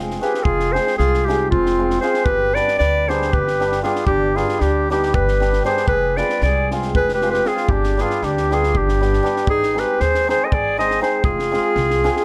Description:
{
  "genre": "balkan folk, Balkan wedding band",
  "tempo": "232 BPM (eighths)",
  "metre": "7/8",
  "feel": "straight",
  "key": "G phrygian dominant",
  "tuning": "A4 = 440 Hz",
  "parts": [
    { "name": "hammered dulcimer", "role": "accompaniment", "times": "0.0-12.2 s", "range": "G3 to Ab4", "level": "-27 LUFS", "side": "equal", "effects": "none" },
    { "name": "upright bass", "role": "bass", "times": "0.0-12.1 s", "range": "F1 to Eb2", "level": "-25 LUFS", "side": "equal", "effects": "none" },
    { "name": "compact cocktail drum kit", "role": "percussion", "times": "0.1-12.2 s", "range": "kick drum, snare drum", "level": "-28 LUFS", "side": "equal", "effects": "none" },
    { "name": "clear clarinet", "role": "melody", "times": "0.2-12.2 s", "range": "F4 to Eb5", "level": "-21 LUFS", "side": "equal", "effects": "none" },
    { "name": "mellow trumpet", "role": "second line", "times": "0.2-12.2 s", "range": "C4 to C5", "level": "-28 LUFS", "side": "equal", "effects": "none" }
  ],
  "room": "moderate studio reverb, RT60 0.6 s",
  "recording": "none",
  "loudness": "-18 LUFS",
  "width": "mono",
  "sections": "0.0-9.5 A section; 9.5-12.2 B section",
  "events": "none",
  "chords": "0.0 Fm; 2.3 G; 5.9 Fm; 7.7 G; 9.5 Ab; 11.2 Fm",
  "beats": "0.18 | 0.44 0.70 0.96 1.22 1.48 1.74 1.99 | 2.25 2.51 2.77 3.03 3.29 3.55 3.81 | 4.07 4.33 4.58 4.84 5.10 5.36 5.62 | 5.88 6.14 6.39 6.65 6.91 7.17 7.42 | 7.68 7.94 8.19 8.45 8.70 8.96 9.21 | 9.47 9.72 9.98 10.23 10.48 10.73 10.99 | 11.24 11.49 11.74 11.99 12.24"
}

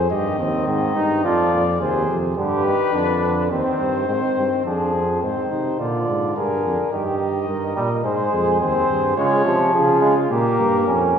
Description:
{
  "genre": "classical, imitative canzona for brass ensemble",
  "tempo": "106 BPM",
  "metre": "4/4",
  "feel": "straight",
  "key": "F minor",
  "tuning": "A4 = 440 Hz",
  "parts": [
    { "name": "dark trumpet", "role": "melody", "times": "0.0-11.2 s", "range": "Ab4 to Eb5", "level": "-23 LUFS", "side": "left 5 dB", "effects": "none" },
    { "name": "mellow flugelhorn", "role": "second line", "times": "0.0-11.2 s", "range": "C4 to Bb4", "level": "-24 LUFS", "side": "right 3 dB", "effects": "none" },
    { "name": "warm bass trombone", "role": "bass", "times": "0.0-11.2 s", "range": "Eb2 to Db3", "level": "-24 LUFS", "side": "right 2 dB", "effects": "none" },
    { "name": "clear trombone", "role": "accompaniment", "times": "0.1-11.2 s", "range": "Bb2 to Db4", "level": "-23 LUFS", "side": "right 1 dB", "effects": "none" }
  ],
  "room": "wet recital hall reverb, RT60 1.7 s",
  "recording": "recorded in a church or concert hall",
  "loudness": "-17 LUFS",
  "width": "side -7 dB against mid",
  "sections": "0.0-4.7 A section; 4.7-11.2 B section",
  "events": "none",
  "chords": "0.1 Cm; 1.2 Fm; 2.4 G; 3.5 Cm/Eb; 4.7 Fm; 5.8 Bb; 6.9 Eb/G; 8.0 Ab; 9.2 Db; 10.3 Gdim",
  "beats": "| 0.11 0.67 1.24 1.80 | 2.37 2.94 3.51 4.08 | 4.66 5.23 5.80 6.36 | 6.92 7.49 8.05 8.61 | 9.17 9.73 10.31 10.88"
}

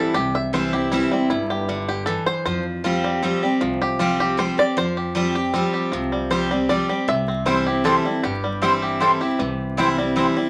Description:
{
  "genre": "bluegrass",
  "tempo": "156 BPM",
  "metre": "3/4",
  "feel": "straight",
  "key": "C major",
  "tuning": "A4 = 441 Hz",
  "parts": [
    { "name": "bluegrass banjo", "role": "melody", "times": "0.0-10.5 s", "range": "E3 to E5", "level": "-26 LUFS", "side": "equal", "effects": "none" },
    { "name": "picked steel-string acoustic guitar", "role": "accompaniment", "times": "0.0-10.5 s", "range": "G2 to G4", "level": "-24 LUFS", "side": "equal", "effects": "none" },
    { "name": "upright bass", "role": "bass", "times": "0.1-10.2 s", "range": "G1 to F2", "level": "-34 LUFS", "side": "equal", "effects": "none" },
    { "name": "mandolin", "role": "stabs", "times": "7.5-10.3 s", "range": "C4 to G5", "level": "-23 LUFS", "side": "equal", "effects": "none" }
  ],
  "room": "wet small room reverb, RT60 0.6 s",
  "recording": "vinyl crackle",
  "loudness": "-21 LUFS",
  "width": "mono",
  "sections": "0.0-10.5 A section",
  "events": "five-string banjo solo 0.0-10.5",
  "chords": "0.0 C; 2.5 Fsus2; 7.1 C",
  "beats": "| 0.15 0.53 0.92 | 1.30 1.69 2.07 | 2.46 2.84 3.23 | 3.61 4.00 4.38 | 4.77 5.16 5.54 | 5.93 6.31 6.70 | 7.08 7.47 7.85 | 8.24 8.62 9.01 | 9.39 9.78 10.16"
}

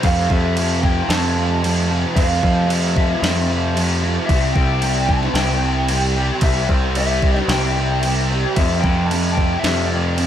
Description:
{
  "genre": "rock, shoegaze and dream pop",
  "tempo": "112 BPM",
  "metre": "4/4",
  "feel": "straight",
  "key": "unclear",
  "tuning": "A4 = 440 Hz",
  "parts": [
    { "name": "electric guitar through a small old amp", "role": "melody", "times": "0.0-10.3 s", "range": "C5 to A5", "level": "-24 LUFS", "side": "left 2 dB", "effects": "digital delay" },
    { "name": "fuzz guitar", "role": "riff", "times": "0.0-10.3 s", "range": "F2 to C4", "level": "-22 LUFS", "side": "equal", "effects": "distortion, analog chorus" },
    { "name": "growling picked electric bass", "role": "bass", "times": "0.0-10.3 s", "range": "C2 to F2", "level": "-20 LUFS", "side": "equal", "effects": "overdrive" },
    { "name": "crisp 8-bit digital drum machine", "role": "drums", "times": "0.0-10.3 s", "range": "crash cymbal, kick drum, snare drum", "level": "-21 LUFS", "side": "equal", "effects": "none" }
  ],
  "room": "light reverb, digital ambience",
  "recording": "none",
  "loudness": "-15 LUFS",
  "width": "side -10 dB against mid",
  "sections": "0.0-10.3 A section",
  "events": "none",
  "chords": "0.0 Fmaj7; 4.3 C; 8.6 F5",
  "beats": "| 0.03 0.56 1.09 1.62 | 2.15 2.69 3.22 3.75 | 4.29 4.82 5.35 5.89 | 6.42 6.96 7.49 8.03 | 8.56 9.10 9.63 10.17"
}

